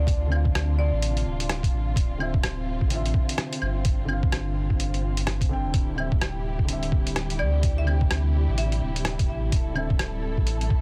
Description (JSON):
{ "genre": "future garage", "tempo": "127 BPM", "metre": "4/4", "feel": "swing 61% on 16ths", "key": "D minor", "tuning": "A4 = 440 Hz", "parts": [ { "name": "marimba with hard mallets", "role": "melody", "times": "0.0-1.3, 7.4-9.1 s", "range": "D5 to E5", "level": "-38 LUFS", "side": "equal", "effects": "tape echo" }, { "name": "felt-muted upright piano", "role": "accompaniment", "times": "0.0-9.9 s", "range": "D3 to G5", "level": "-36 LUFS", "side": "equal", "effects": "sidechain pumping, tape echo" }, { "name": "dark studio string section", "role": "sustained chords", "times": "0.0-10.8 s", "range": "C3 to A4", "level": "-37 LUFS", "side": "equal", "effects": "sidechain pumping" }, { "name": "warm sub bass", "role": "bass", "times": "0.0-10.7 s", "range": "D1 to D2", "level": "-28 LUFS", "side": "equal", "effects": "sidechain pumping" }, { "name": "electronic kick drum", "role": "drums", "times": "0.1-10.8 s", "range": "none", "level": "-26 LUFS", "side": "equal", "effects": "none" }, { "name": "lo-fi sampler-style drum kit", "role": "drums", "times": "0.1-10.7 s", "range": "claves, hi-hat, rim click", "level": "-33 LUFS", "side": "equal", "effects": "soft clipping on snare" } ], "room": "small room reverb", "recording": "dense, heavily limited modern master", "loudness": "-25 LUFS", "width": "mono", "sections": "0.0-10.8 A section", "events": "none", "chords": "0.0 Dm9" }